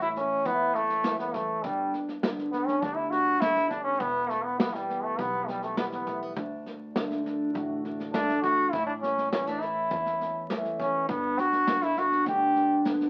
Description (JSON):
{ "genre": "acoustic folk duo or small band", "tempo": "102 BPM", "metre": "4/4", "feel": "straight", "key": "unclear", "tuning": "A4 = 440 Hz", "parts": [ { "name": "brilliant trombone", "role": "melody", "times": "0.0-12.8 s", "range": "G3 to G4", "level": "-29 LUFS", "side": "equal", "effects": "none" }, { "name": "fingerpicked old ladder-braced acoustic guitar", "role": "accompaniment", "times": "0.0-13.1 s", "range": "D2 to G4", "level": "-34 LUFS", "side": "equal", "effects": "none" }, { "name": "upright bass", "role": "bass", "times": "0.0-13.1 s", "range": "E1 to E2", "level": "-47 LUFS", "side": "equal", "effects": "none" }, { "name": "vintage brush drum kit", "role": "drums", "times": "0.0-13.1 s", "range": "kick drum, snare drum", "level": "-35 LUFS", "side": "equal", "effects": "none" } ], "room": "wet studio ambience, RT60 0.5 s", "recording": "very old 78 rpm record, vinyl crackle", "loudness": "-28 LUFS", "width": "mono", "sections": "0.0-13.1 A section", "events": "trombone solo 0.0-13.1", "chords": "0.0 A; 1.6 G; 4.0 Em; 6.4 D; 8.7 A; 11.1 G", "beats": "0.46 1.05 | 1.64 2.23 2.83 3.42 | 4.00 4.59 5.18 5.78 | 6.37 6.96 7.54 8.13 | 8.72 9.31 9.90 10.49 | 11.08 11.67 12.26 12.85" }